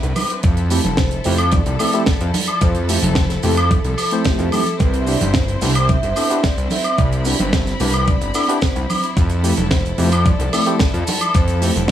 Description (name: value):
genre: nu-disco, nu disco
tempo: 110 BPM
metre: 4/4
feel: straight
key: unclear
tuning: A4 = 438 Hz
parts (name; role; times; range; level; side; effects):
- clear symphonic string section; sustained chords; 0.0-11.9 s; F3 to B5; -26 LUFS; left 3 dB; sidechain pumping
- fat analog bass; bass; 0.0-11.9 s; F1 to F2; -19 LUFS; equal; none
- tight funk drum kit; drums; 0.0-11.9 s; hi-hat, snare drum, woodblock; -22 LUFS; equal; none
- bongos, maracas and congas; percussion; 0.0-11.9 s; none; -27 LUFS; right 4 dB; none
- electronic kick drum; drums; 0.4-11.5 s; none; -18 LUFS; equal; none
- tine electric piano; accompaniment; 0.7-11.7 s; A3 to C5; -23 LUFS; equal; fast stereo tremolo
- vibraphone with soft mallets; melody; 1.0-11.9 s; G4 to E5; -27 LUFS; right 1 dB; tape echo
room: studio reverb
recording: studio ambience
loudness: -15 LUFS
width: side -11 dB against mid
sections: 0.0-11.9 A section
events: none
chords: 0.4 Fmaj7; 4.8 Cmaj7; 9.2 Fmaj7